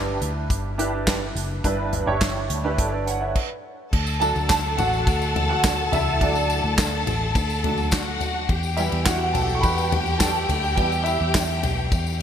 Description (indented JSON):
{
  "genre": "piano-driven pop",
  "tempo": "105 BPM",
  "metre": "4/4",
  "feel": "straight",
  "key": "D major",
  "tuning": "A4 = 438 Hz",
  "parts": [
    { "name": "warm baby grand piano", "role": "accompaniment", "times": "0.0-12.2 s", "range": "G2 to C#6", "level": "-26 LUFS", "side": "right 2 dB", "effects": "ensemble chorus" },
    { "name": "vintage muted fingered electric bass", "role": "bass", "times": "0.0-12.2 s", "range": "F#1 to E2", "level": "-26 LUFS", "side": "equal", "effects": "none" },
    { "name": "unplugged drum kit", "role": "drums", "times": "0.2-12.1 s", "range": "crash cymbal, handclaps, hi-hat, kick drum, ride cymbal, snare drum, toms", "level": "-25 LUFS", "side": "equal", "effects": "none" },
    { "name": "warm studio violin section", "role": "second line", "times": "3.9-12.2 s", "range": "F#4 to A5", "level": "-26 LUFS", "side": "left 2 dB", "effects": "none" },
    { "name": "tambourine", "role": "percussion", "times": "4.1-12.2 s", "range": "none", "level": "-36 LUFS", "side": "left 8 dB", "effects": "none" }
  ],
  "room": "moderate plate reverb, RT60 3.0 s",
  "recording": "bright 1980s-style digital production",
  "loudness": "-20 LUFS",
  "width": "side -8 dB against mid",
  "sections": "0.0-3.9 A section; 3.9-12.2 B section",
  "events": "stop 3.4-3.9; grand piano solo 3.9-12.2",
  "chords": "0.0 G6; 3.9 D; 8.5 Emadd9",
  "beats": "0.50 1.07 | 1.64 2.21 2.78 3.35 | 3.93 4.50 5.07 5.64 | 6.21 6.78 7.35 7.92 | 8.49 9.06 9.63 10.21 | 10.78 11.35 11.92"
}